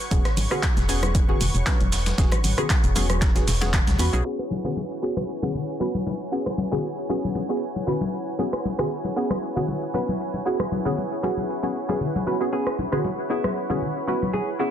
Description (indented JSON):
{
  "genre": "deep house",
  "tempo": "116 BPM",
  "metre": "4/4",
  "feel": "swing 54% on 16ths",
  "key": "E major",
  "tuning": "A4 = 440 Hz",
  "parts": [
    { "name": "warm analog pad", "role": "sustained chords", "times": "0.0-14.7 s", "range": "E4 to C#6", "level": "-33 LUFS", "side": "right 2 dB", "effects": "chorus, sidechain pumping" },
    { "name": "punchy analog drum machine", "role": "drums", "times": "0.0-13.5 s", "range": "crash cymbal, handclaps, hi-hat, rim click, shaker", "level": "-29 LUFS", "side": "right 1 dB", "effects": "low-pass filter on hats, low-pass filter on perc, low-pass filter on snare, low-pass filter on cymbals, low-pass filter on room" },
    { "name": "filtered dub chord stab", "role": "stabs", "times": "0.1-14.7 s", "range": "B3 to B4", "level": "-27 LUFS", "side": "equal", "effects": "analog chorus, sidechain pumping, ping-pong delay" },
    { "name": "organ-like FM bass", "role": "bass", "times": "0.1-4.2 s", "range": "E1 to E2", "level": "-24 LUFS", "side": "equal", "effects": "sidechain pumping" },
    { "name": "breakbeat sampler-style drum kit", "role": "drums", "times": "0.1-4.1 s", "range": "hi-hat, snare drum", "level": "-36 LUFS", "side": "left 2 dB", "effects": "sidechain pumping on hats, high-pass filter on hats, high-pass filter on snare" },
    { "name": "electronic kick drum", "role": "drums", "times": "0.1-3.8 s", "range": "none", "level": "-22 LUFS", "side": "equal", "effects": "none" },
    { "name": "congas", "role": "percussion", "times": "0.1-14.4 s", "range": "none", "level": "-29 LUFS", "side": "left 3 dB", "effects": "sidechain pumping on perc" },
    { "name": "archtop guitar, miked and amplified", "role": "melody", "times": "12.5-14.7 s", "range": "E4 to G#4", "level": "-32 LUFS", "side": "right 3 dB", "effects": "digital delay" }
  ],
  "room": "light reverb",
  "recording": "dense, heavily limited modern master, low-pass filter",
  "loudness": "-22 LUFS",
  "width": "side -9 dB against mid",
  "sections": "0.0-4.3 A section; 4.3-14.7 B section",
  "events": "filter sweep on drum 4.3-14.7; filter sweep 4.3-14.7",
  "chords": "0.0 E69"
}